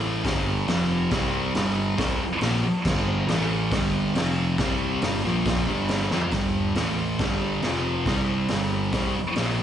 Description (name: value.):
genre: garage rock duo or trio.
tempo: 138 BPM.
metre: 4/4.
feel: straight.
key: G minor.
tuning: A4 = 440 Hz.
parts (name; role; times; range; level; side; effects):
thick fuzz guitar; riff; 0.0-9.6 s; F2 to F4; -24 LUFS; equal; distortion.
fuzz picked electric bass; bass; 0.0-9.6 s; F1 to F2; -30 LUFS; equal; overdrive.
raw garage drum kit; drums; 0.2-9.5 s; crash cymbal, hi-hat, kick drum, snare drum, toms; -28 LUFS; equal; none.
room: light reverb, studio ambience.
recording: live gig heard through the venue's PA, club reverb, nothing above 10.9 kHz.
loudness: -22 LUFS.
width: side -10 dB against mid.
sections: 0.0-6.3 A section; 6.3-9.6 B section.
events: drum fill 6.1.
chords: 0.2 G5; 0.7 F5; 1.1 C5; 1.5 Gm; 3.3 A5; 3.7 G5; 4.2 F5; 4.6 C5; 5.0 G5; 5.2 Bb5; 5.7 G5; 6.8 A5; 7.2 G5; 7.6 F5; 8.1 C5; 8.5 Gm.